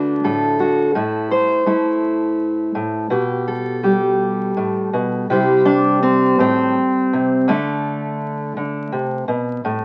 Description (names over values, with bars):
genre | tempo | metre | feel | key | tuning
folk, solo fingerstyle acoustic guitar | 56 BPM (dotted quarters) | 6/8 | straight | unclear | A4 = 437 Hz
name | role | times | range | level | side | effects
fingerpicked steel-string acoustic guitar | solo | 0.0-9.8 s | A2 to C5 | -19 LUFS | equal | none
room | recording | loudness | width
moderate studio reverb, RT60 0.7 s | very old 78 rpm record, vinyl crackle | -19 LUFS | mono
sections
0.0-5.3 A section; 5.3-9.8 B section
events
none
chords
0.0 D; 1.0 Am; 3.1 G/B; 5.3 C; 7.5 D5